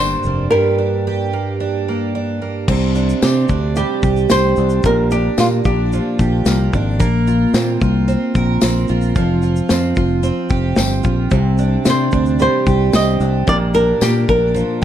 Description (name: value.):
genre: acoustic pop.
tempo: 111 BPM.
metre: 4/4.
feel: straight.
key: unclear.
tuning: A4 = 440 Hz.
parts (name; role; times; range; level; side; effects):
flamenco guitar; melody; 0.0-6.7, 11.9-14.8 s; F4 to Eb5; -18 LUFS; equal; none.
picked twelve-string acoustic guitar; accompaniment; 0.0-14.8 s; G2 to Bb4; -18 LUFS; right 3 dB; none.
fingered electric bass; bass; 0.0-14.6 s; F1 to C3; -17 LUFS; left 1 dB; none.
modern studio drum kit; drums; 0.2-14.7 s; crash cymbal, kick drum, shaker, snare drum; -20 LUFS; left 1 dB; none.
tambourine; percussion; 3.2-14.1 s; none; -27 LUFS; left 7 dB; none.
room: light reverb.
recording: dark, warm production.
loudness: -14 LUFS.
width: side -10 dB against mid.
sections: 0.0-2.7 A section; 2.7-14.8 B section.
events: none.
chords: 0.0 Gm; 2.7 Csus2; 4.8 Gm7/Bb; 7.0 Bbsus2; 9.2 Fsus2; 11.3 Csus2; 13.5 Gm7/Bb.